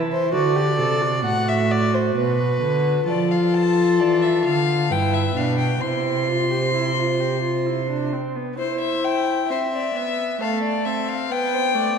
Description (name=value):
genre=classical, baroque-style fugue for string quartet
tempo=66 BPM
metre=3/4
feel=straight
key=C major from 3.1 s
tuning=A4 = 440 Hz
part: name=warm viola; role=accompaniment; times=0.0-12.0 s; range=A3 to A4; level=-23 LUFS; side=left 1 dB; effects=none
part: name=warm cello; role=bass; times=0.0-8.1 s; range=G2 to F3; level=-23 LUFS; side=right 3 dB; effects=none
part: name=warm violin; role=second line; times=0.1-12.0 s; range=A4 to F#5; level=-25 LUFS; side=left 1 dB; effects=none
part: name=rich violin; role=melody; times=3.1-12.0 s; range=C5 to C6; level=-25 LUFS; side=left 6 dB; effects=none
room=wet scoring stage reverb, RT60 2.0 s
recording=dark, warm production, faint mains hum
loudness=-19 LUFS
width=side -6 dB against mid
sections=0.0-3.1 A section; 3.1-8.6 B section; 8.6-12.0 C section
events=none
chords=0.3 D7; 2.2 Bm; 3.1 Dm/F; 4.9 G7; 5.8 C; 8.6 C/E; 10.4 F/A; 11.3 G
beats=| 0.34 1.25 2.16 | 3.07 3.99 4.91 | 5.82 6.74 7.66 | 8.58 9.49 10.40 | 11.31